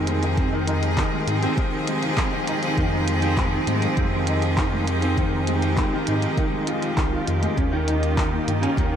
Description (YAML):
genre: piano and strings electronica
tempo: 100 BPM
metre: 4/4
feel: straight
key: F minor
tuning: A4 = 441 Hz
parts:
  - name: bright string quartet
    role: sustained chords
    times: 0.0-9.0 s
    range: Eb3 to Ab4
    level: -27 LUFS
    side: right 1 dB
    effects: sidechain pumping
  - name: warm concert grand piano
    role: riff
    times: 0.0-9.0 s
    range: Eb3 to F4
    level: -24 LUFS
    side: equal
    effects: ensemble chorus, ping-pong delay
  - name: round analog bass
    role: bass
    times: 0.0-9.0 s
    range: C2 to Ab2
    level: -25 LUFS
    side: equal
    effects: sidechain pumping
  - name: minimal click drum kit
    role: drums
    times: 0.1-8.9 s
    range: handclaps, hi-hat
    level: -33 LUFS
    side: equal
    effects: none
  - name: electronic kick drum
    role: drums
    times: 0.4-8.9 s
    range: none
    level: -25 LUFS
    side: equal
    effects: overdrive
room: wet cathedral reverb, RT60 5.2 s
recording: dreamy mix soaked in reverb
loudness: -20 LUFS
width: side -8 dB against mid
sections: 0.0-9.0 A section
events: none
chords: 0.0 Fm7; 7.6 Eb7